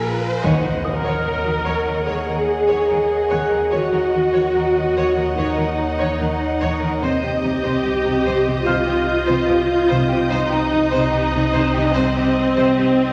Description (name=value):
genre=cinematic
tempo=73 BPM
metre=4/4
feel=straight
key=unclear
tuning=A4 = 439 Hz
part: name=warm symphonic violin section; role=second line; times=0.0-13.1 s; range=Eb4 to Eb5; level=-27 LUFS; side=equal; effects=none
part: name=warm studio viola section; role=accompaniment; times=0.0-13.1 s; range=Bb3 to Bb4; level=-23 LUFS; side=equal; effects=none
part: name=glass harmonica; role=sustained chords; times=0.0-13.1 s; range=Eb4 to Ab5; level=-35 LUFS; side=equal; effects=none
part: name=warm studio cello section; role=bass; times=0.0-12.9 s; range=Bb2 to Eb3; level=-27 LUFS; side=equal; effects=none
part: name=warm symphonic double bass section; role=bass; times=0.0-12.8 s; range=Bb1 to Eb2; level=-34 LUFS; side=equal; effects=none
part: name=deep rumbling drone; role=drone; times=0.0-13.1 s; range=Bb1 to Eb2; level=-31 LUFS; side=equal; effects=built-in reverb
part: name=riser and impact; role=sound effects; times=0.0-3.7 s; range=none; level=-29 LUFS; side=equal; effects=none
part: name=dark grand piano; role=texture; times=0.0-13.1 s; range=F5 to Gb6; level=-34 LUFS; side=equal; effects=none
part: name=rich symphonic violin section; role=melody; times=0.4-13.1 s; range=Eb5 to Gb5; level=-34 LUFS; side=equal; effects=none
part: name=timpani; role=percussion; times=0.4-1.6 s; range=Eb3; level=-28 LUFS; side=equal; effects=none
part: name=mellow French horn section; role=sustained chords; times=0.9-13.1 s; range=C4 to Bb4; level=-26 LUFS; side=equal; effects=none
part: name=warm symphonic violin section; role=texture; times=7.0-13.1 s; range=Eb6 to G6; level=-34 LUFS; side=equal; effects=none
room=wet scoring stage reverb, RT60 2.1 s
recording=none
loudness=-19 LUFS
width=mono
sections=0.4-13.1 A section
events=riser 0.0-0.4; band accent 0.4-1.3; impact 0.4-3.7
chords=0.4 Ebm7; 7.0 Cm